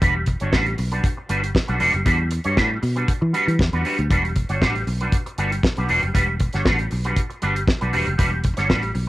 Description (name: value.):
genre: disco.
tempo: 118 BPM.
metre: 4/4.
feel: straight.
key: E dorian.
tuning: A4 = 440 Hz.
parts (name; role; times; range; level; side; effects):
electric guitar with an envelope filter; accompaniment; 0.0-9.0 s; G3 to C#5; -22 LUFS; right 1 dB; ensemble chorus.
fingered electric bass; bass; 0.0-9.1 s; E1 to E3; -23 LUFS; equal; none.
damped 70s drum kit; drums; 0.0-9.1 s; hi-hat, kick drum, snare drum; -22 LUFS; equal; cassette tape.
room: light reverb.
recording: home recording on cassette.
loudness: -18 LUFS.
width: side -16 dB against mid.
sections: 0.0-9.1 A section.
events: none.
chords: 0.0 Em9.